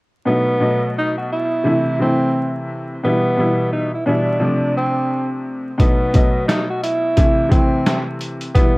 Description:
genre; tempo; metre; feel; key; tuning
hip hop, boom-bap hip-hop; 87 BPM; 4/4; swing 58% on 16ths; unclear; A4 = 439 Hz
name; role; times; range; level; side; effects
breathy tenor saxophone; melody; 0.3-8.8 s; B3 to F#4; -20 LUFS; equal; high-pass filter, low-pass filter, plate reverb
clear upright piano; accompaniment; 0.3-8.8 s; B2 to D#5; -19 LUFS; equal; cassette tape, high-pass filter, low-pass filter
boom bap sampler-style drum kit; drums; 5.8-8.7 s; hi-hat, kick drum, snare drum; -16 LUFS; equal; none
room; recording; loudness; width
moderate studio reverb, RT60 0.5 s; worn, warbling old tape, cassette tape, vinyl crackle, warbly pitch drift; -15 LUFS; side -22 dB against mid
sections
0.3-8.8 A section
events
none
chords
0.3 B7; 1.7 Am; 3.0 Em; 4.4 F6; 5.8 B7; 7.2 Am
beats
| 0.28 0.97 1.66 2.35 | 3.04 3.73 4.42 5.11 | 5.80 6.49 7.18 7.87 | 8.56

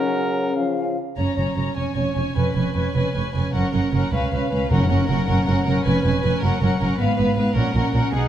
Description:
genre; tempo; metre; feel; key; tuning
quick classical-period movement for symphony orchestra; 103 BPM (dotted quarters); 6/8; uneven beats, rubato; F# major; A4 = 439 Hz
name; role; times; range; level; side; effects
clear oboe; second line; 0.0-0.5 s; A#4; -27 LUFS; left 2 dB; none
mellow hollow concert flute; second line; 0.0-1.0 s; E#5 to F#5; -29 LUFS; left 2 dB; none
warm clarinet; second line; 0.0-0.8 s; C#4; -28 LUFS; left 2 dB; none
mellow bassoon; accompaniment; 0.0-1.0 s; C#3; -28 LUFS; right 2 dB; none
mellow French horn section; sustained chords; 0.0-1.0 s; E#3 to C#4; -27 LUFS; left 5 dB; none
warm chamber violin section; melody; 1.2-8.3 s; E#5 to A#5; -30 LUFS; left 4 dB; none
warm chamber violin section; second line; 1.2-8.3 s; G#4 to C#5; -27 LUFS; left 1 dB; none
dark studio viola section; accompaniment; 1.2-8.3 s; Cb4 to D#4; -26 LUFS; right 1 dB; none
dark chamber cello section; bass; 1.2-8.2 s; C#2 to B2; -24 LUFS; right 2 dB; none
dark chamber double bass section; bass; 1.2-8.2 s; E#1 to C#2; -23 LUFS; right 2 dB; none
timpani; percussion; 4.7-5.2 s; F#2; -26 LUFS; left 2 dB; none
room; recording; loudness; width
wet recital hall reverb, RT60 1.3 s; dark, warm production; -18 LUFS; side -11 dB against mid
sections
0.0-1.2 A section; 1.2-8.3 B section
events
none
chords
0.0 F#/C#; 0.6 C#; 1.2 F#; 1.8 C#; 3.5 F#; 4.1 C#7; 4.7 F#; 5.9 C#7/E#; 6.4 F#; 7.0 Fdim/Ab; 7.6 F#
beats
0.55 | 1.18 1.77 | 2.37 2.96 | 3.54 4.13 | 4.71 5.28 | 5.86 6.43 | 7.00 7.57 | 8.14

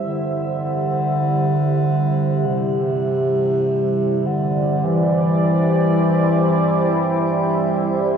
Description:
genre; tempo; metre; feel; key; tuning
ambient; free time; none; none; unclear; A4 = 442 Hz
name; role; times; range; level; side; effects
dark bass clarinet; melody; 0.0-8.2 s; C3 to E3; -19 LUFS; equal; analog delay
deep dark ambient pad; sustained chords; 0.0-8.2 s; G3 to E5; -20 LUFS; right 1 dB; chorus, built-in reverb, shimmer reverb
room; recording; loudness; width
wet echo chamber reverb, RT60 2.7 s; echo-heavy mix; -16 LUFS; side -7 dB against mid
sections
0.0-8.2 A section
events
none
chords
0.0 C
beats
free time

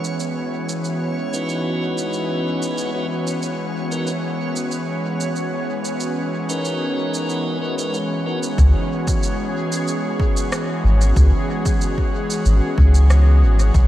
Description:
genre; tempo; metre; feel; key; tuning
ambient dub; 93 BPM; 4/4; straight; C# dorian; A4 = 440 Hz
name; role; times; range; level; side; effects
airy breathy pad; sustained chords; 0.0-13.9 s; C#3 to F#4; -23 LUFS; equal; chorus
electronic shaker and rim click; drums; 0.0-13.9 s; none; -31 LUFS; right 2 dB; dub echo
backwards swelling texture; texture; 0.0-13.9 s; G#4 to C#5; -31 LUFS; equal; built-in reverb, lush chorus
tonewheel organ; stabs; 1.3-8.4 s; C#4 to B4; -27 LUFS; left 1 dB; overdrive, stopped rotary speaker, low-pass filter, dub echo
soft dub sub bass; bass; 8.6-13.9 s; G#1 to C#2; -12 LUFS; equal; none
electronic kick drum; drums; 8.6-13.9 s; none; -20 LUFS; equal; overdrive
room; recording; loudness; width
moderate lush hall reverb, RT60 2.8 s; dreamy mix soaked in reverb; -18 LUFS; side -14 dB against mid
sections
0.0-8.6 A section; 8.6-13.9 B section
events
none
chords
0.0 C#m11; 3.4 Bmaj9; 8.6 C#m7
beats
0.20 | 0.84 1.49 2.13 2.78 | 3.42 4.07 4.71 5.36 | 6.00 6.65 7.29 7.94 | 8.58 9.23 9.87 10.52 | 11.16 11.81 12.46 13.10 | 13.74

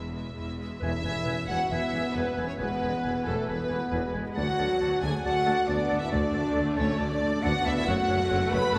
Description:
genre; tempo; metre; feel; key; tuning
cinematic; 136 BPM; 4/4; straight; E mixolydian; A4 = 441 Hz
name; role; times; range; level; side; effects
warm symphonic violin section; melody; 0.0-8.8 s; A4 to B5; -36 LUFS; equal; none
warm symphonic violin section; second line; 0.0-8.8 s; A4 to B5; -42 LUFS; equal; none
dark symphonic viola section; accompaniment; 0.0-8.8 s; E3 to B3; -38 LUFS; equal; none
mellow French horn section; sustained chords; 0.0-8.8 s; A3 to B4; -32 LUFS; equal; none
rich symphonic cello section; bass; 0.0-8.8 s; D2 to F#2; -38 LUFS; equal; none
rich symphonic double bass section; bass; 0.0-8.8 s; E1 to D2; -38 LUFS; equal; none
clear oboe; second line; 0.8-8.8 s; F#5 to A5; -40 LUFS; equal; none
hollow concert flute; second line; 0.8-8.8 s; A4 to B5; -39 LUFS; equal; none
mellow clarinet; second line; 0.8-8.8 s; B4 to D5; -42 LUFS; equal; none
warm tuba; bass; 0.8-8.8 s; E1 to D2; -39 LUFS; equal; none
timpani; percussion; 0.8-1.4 s; E2; -41 LUFS; equal; none
room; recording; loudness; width
wet church reverb, RT60 3.5 s; recorded in a church or concert hall; -28 LUFS; mono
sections
0.8-8.8 A section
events
none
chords
0.0 E; 4.4 D; 7.9 F#m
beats
0.36 | 0.82 1.27 1.71 2.15 | 2.60 3.04 3.48 3.93 | 4.37 4.80 5.25 5.69 | 6.13 6.56 7.00 7.44 | 7.88 8.31 8.75

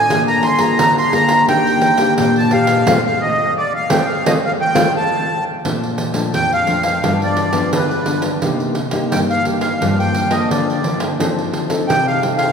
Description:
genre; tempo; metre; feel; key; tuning
samba and choro; 86 BPM; 4/4; straight; Bb major; A4 = 440 Hz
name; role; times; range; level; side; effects
accordion; melody; 0.0-12.5 s; B4 to C6; -17 LUFS; equal; light tremolo tuning
nylon-string guitar; accompaniment; 0.0-12.5 s; F2 to A4; -18 LUFS; left 2 dB; none
pandeiro; percussion; 0.1-12.5 s; none; -21 LUFS; right 4 dB; none
room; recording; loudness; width
wet church reverb, RT60 3.8 s; recorded in a church or concert hall; -14 LUFS; side -6 dB against mid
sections
0.0-5.6 A section; 5.6-12.5 B section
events
band accent 2.9-5.6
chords
0.1 Bb7/D; 1.5 Ebmaj7; 2.9 F; 5.6 Bbmaj7; 7.0 G7; 8.4 Cm7; 9.8 Gm7; 11.2 F7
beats
| 0.10 0.79 1.49 2.18 | 2.87 3.56 4.26 4.95 | 5.64 6.34 7.03 7.73 | 8.42 9.12 9.81 10.50 | 11.20 11.89

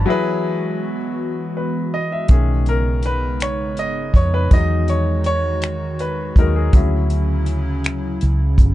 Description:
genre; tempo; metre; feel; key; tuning
slow six-eight R&B; 54 BPM (dotted quarters); 6/8; straight; B major; A4 = 440 Hz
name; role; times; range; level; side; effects
clear baby grand piano; accompaniment; 0.0-8.7 s; D#3 to A5; -22 LUFS; left 2 dB; none
hollow soft pad; sustained chords; 0.0-8.7 s; C#3 to F#4; -26 LUFS; equal; chorus
vintage muted fingered electric bass; bass; 0.0-8.7 s; G1 to E#2; -19 LUFS; equal; none
warm soul drum kit; drums; 2.3-8.7 s; finger snaps, hi-hat, kick drum; -14 LUFS; equal; none
room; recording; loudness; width
little or no reverb; dark, warm production, nothing above 10.5 kHz; -16 LUFS; side -15 dB against mid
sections
0.0-2.3 A section; 2.3-8.7 B section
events
break 0.1-2.3; grand piano solo 2.3-8.7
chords
0.1 F#9sus4; 2.3 B69; 4.5 Emaj9; 6.7 Dmaj9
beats
| 0.07 1.18 | 2.29 3.40 | 4.51 5.62 | 6.73 7.84

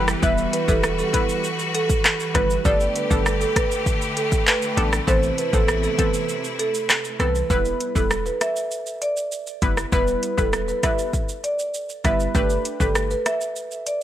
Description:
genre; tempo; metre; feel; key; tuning
dancehall; 99 BPM; 4/4; straight; E minor; A4 = 439 Hz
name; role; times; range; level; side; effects
marimba with medium mallets; melody; 0.0-14.0 s; A4 to E5; -24 LUFS; right 2 dB; tape echo
analog pluck; accompaniment; 0.0-13.0 s; E3 to B4; -26 LUFS; equal; chorus, sidechain pumping
clear studio string section; sustained chords; 0.0-7.5 s; C3 to B4; -28 LUFS; left 1 dB; sidechain pumping
warm 808-style bass; bass; 0.0-13.2 s; E1 to C2; -26 LUFS; equal; none
afro-pop drum kit; drums; 0.1-14.0 s; handclaps, hi-hat, kick drum, rim click, shaker; -22 LUFS; equal; none
room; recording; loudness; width
light reverb, digital ambience; none; -19 LUFS; side -12 dB against mid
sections
0.0-7.5 A section; 7.5-14.0 B section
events
break 6.3-7.5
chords
0.0 Em; 2.7 Gadd9; 5.1 Amadd9; 7.5 Em; 12.3 Gadd9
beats
| 0.23 0.83 1.44 2.04 | 2.65 3.26 3.86 4.47 | 5.08 5.68 6.29 6.89 | 7.50 8.11 8.71 9.32 | 9.92 10.53 11.14 11.74 | 12.35 12.95 13.56

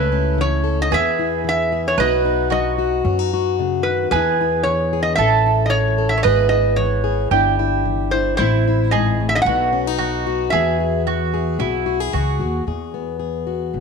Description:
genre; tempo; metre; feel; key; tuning
acoustic folk duo or small band; 112 BPM; 4/4; straight; E major; A4 = 439 Hz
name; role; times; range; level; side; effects
metal-body resonator slide guitar; melody; 0.0-12.1 s; B4 to F#5; -21 LUFS; right 1 dB; none
mandolin; second line; 0.0-12.6 s; E4 to C#5; -22 LUFS; right 11 dB; none
fingerpicked plugged-in steel-string acoustic guitar; accompaniment; 0.0-13.8 s; E2 to A4; -22 LUFS; left 11 dB; none
upright bass; bass; 0.0-13.8 s; G1 to F#2; -22 LUFS; equal; none
room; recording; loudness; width
moderate echo chamber reverb, RT60 1.9 s, small room ambience; 1960s-style stereo with parts hard left and right; -16 LUFS; side -5 dB against mid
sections
0.0-12.7 A section; 12.7-13.8 B section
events
none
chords
0.0 A/C#; 0.9 E; 2.0 B; 4.1 E; 5.2 A; 6.3 E/G#; 7.3 Cadd9/G; 8.4 Am; 9.5 B; 10.5 Eadd9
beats
0.38 0.91 1.45 | 1.98 2.52 3.05 3.58 | 4.12 4.65 5.19 5.72 | 6.25 6.79 7.32 7.86 | 8.39 8.92 9.46 9.99 | 10.52 11.06 11.59 12.13 | 12.66 13.20 13.74

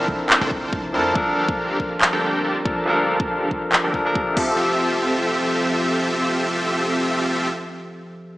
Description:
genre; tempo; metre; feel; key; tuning
future bass; 140 BPM; 4/4; swing 54% on 16ths, half-time; F major; A4 = 437 Hz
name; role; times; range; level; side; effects
barky tine electric piano; accompaniment; 0.0-8.4 s; F3 to E5; -24 LUFS; left 1 dB; medium stereo tremolo, sidechain pumping, digital delay
rich studio string section; sustained chords; 0.0-7.5 s; F2 to A5; -31 LUFS; right 1 dB; none
dense compressed supersaw; riff; 0.0-7.5 s; C4 to A5; -22 LUFS; equal; sidechain pumping, low-pass filter, digital delay
warm 808-style bass; bass; 0.0-1.1 s; F1 to F2; -34 LUFS; equal; sidechain pumping
electronic kick drum; drums; 0.1-4.5 s; none; -28 LUFS; equal; none
pop drum kit; drums; 0.3-4.5 s; crash cymbal, handclaps; -19 LUFS; equal; none
room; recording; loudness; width
moderate lush hall reverb, RT60 2.0 s, digital ambience; small speaker sound; -18 LUFS; side -17 dB against mid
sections
0.0-4.6 A section; 4.6-8.0 B section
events
filter sweep on supersaw synth 0.0-4.6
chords
0.0 C13/F; 1.2 Gm9/F; 4.4 Fmaj9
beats
0.30 0.73 | 1.15 1.58 2.01 2.44 | 2.87 3.30 3.73 4.15 | 4.58 5.01 5.44 5.87 | 6.30 6.73 7.15 7.58

